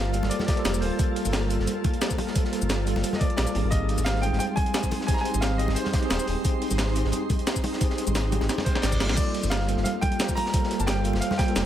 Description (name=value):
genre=liquid drum and bass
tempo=176 BPM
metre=4/4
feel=straight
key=G minor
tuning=A4 = 440 Hz
part: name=bright grand piano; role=melody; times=0.0-11.7 s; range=C5 to Bb5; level=-32 LUFS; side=right 1 dB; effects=tape echo
part: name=bell-like tine electric piano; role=accompaniment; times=0.0-11.7 s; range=G3 to A4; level=-30 LUFS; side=right 1 dB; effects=fast stereo tremolo
part: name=shimmering ambient pad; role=sustained chords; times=0.1-11.7 s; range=G3 to C6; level=-34 LUFS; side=right 1 dB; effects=chorus, built-in reverb
part: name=sub bass with octave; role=bass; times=0.0-11.7 s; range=D1 to Bb1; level=-26 LUFS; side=equal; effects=tube saturation
part: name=breakbeat sampler-style drum kit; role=drums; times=0.1-11.6 s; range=crash cymbal, hi-hat, shaker, snare drum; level=-30 LUFS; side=equal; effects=none
part: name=crunchy breakbeat drum kit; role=drums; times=0.1-11.6 s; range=hi-hat, snare drum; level=-36 LUFS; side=equal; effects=high-pass filter on hats, high-pass filter on snare, high-pass filter on room
part: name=congas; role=percussion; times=0.2-11.4 s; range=none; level=-34 LUFS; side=left 2 dB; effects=none
part: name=electronic kick drum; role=drums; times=0.5-11.5 s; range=none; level=-26 LUFS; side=equal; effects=overdrive
part: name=reverse cymbal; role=sound effects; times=8.6-9.2 s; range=none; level=-35 LUFS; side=right 1 dB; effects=none
room=light reverb, studio ambience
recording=none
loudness=-22 LUFS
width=side -11 dB against mid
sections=0.0-11.7 A section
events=drum fill 8.5-9.2; reverse cymbal 8.6-9.2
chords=0.0 Gm9; 3.5 Abmaj7; 9.0 Gm9